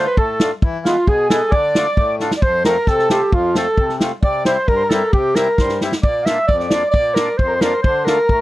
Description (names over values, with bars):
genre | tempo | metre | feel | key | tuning
klezmer | 133 BPM | 2/4 | straight | F major | A4 = 441 Hz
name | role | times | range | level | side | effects
warm clarinet | melody | 0.0-8.4 s | F4 to F5 | -17 LUFS | right 1 dB | none
mellow accordion | second line | 0.0-8.4 s | F4 to E5 | -23 LUFS | equal | none
accordion | accompaniment | 0.0-8.4 s | F2 to F4 | -23 LUFS | left 3 dB | none
vintage drum kit | drums | 0.2-8.4 s | kick drum, snare drum | -17 LUFS | equal | none
room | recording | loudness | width
little or no reverb | dry, close 1970s-style studio recording | -14 LUFS | side -16 dB against mid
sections
0.0-2.4 A section; 2.4-8.4 B section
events
drum fill 2.2, 5.6-6.0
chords
0.0 Dm; 0.6 E; 1.5 Dm; 2.4 F; 4.2 C; 6.0 Bb; 7.8 Dm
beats
0.17 | 0.62 1.07 | 1.52 1.97 | 2.42 2.88 | 3.33 3.78 | 4.23 4.68 | 5.13 5.58 | 6.04 6.49 | 6.94 7.39 | 7.84 8.29